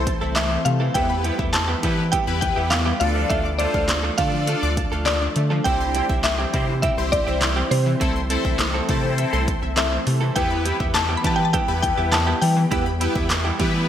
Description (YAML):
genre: dance-pop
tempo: 102 BPM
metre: 4/4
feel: straight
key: unclear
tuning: A4 = 440 Hz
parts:
  - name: shimmering ambient pad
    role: sustained chords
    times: 0.0-13.9 s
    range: E3 to D4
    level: -31 LUFS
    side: left 1 dB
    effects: chorus, built-in reverb, sidechain pumping
  - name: analog pluck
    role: arpeggios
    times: 0.0-13.9 s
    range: E3 to F6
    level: -32 LUFS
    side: left 2 dB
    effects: chorus, sidechain pumping, digital delay
  - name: round analog bass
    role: bass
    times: 0.0-13.9 s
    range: C2 to E3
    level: -24 LUFS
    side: equal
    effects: sidechain pumping
  - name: direct-recorded clean electric guitar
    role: riff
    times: 0.1-13.8 s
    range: G3 to A4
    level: -30 LUFS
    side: right 6 dB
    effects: lush chorus
  - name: pop drum kit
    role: drums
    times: 0.1-13.7 s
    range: handclaps, hi-hat, kick drum, snare drum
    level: -24 LUFS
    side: equal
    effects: gated reverb
  - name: mallet-like synth pluck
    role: melody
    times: 0.4-13.9 s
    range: C5 to B5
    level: -25 LUFS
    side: left 1 dB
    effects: chorus
  - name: big bright polysynth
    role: accompaniment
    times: 0.9-13.9 s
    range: B3 to D5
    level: -27 LUFS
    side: left 2 dB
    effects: chorus, phaser, sidechain pumping
room: moderate lush hall reverb, RT60 2.2 s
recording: bright 1980s-style digital production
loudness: -18 LUFS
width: side -10 dB against mid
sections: 0.0-13.9 A section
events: none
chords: 0.0 Am/C; 0.9 Em; 3.0 Dm; 5.7 C; 8.0 Am/C; 10.4 Em